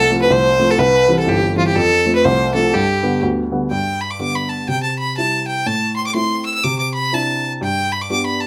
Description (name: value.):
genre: celtic folk, Celtic polka.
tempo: 123 BPM.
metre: 2/4.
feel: swing 61% on 8ths.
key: G mixolydian.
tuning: A4 = 440 Hz.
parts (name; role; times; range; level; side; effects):
clear fiddle; melody; 0.0-8.5 s; F4 to E6; -19 LUFS; equal; none.
dark upright piano; accompaniment; 0.0-8.5 s; G1 to G4; -21 LUFS; equal; none.
room: moderate studio reverb, RT60 0.5 s.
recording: none.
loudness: -17 LUFS.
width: mono.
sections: 0.0-3.7 A section; 3.7-8.5 B section.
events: none.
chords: 0.0 F; 0.8 C; 1.8 F; 2.7 G; 4.7 C; 5.7 Am; 6.6 Cadd9; 7.6 G.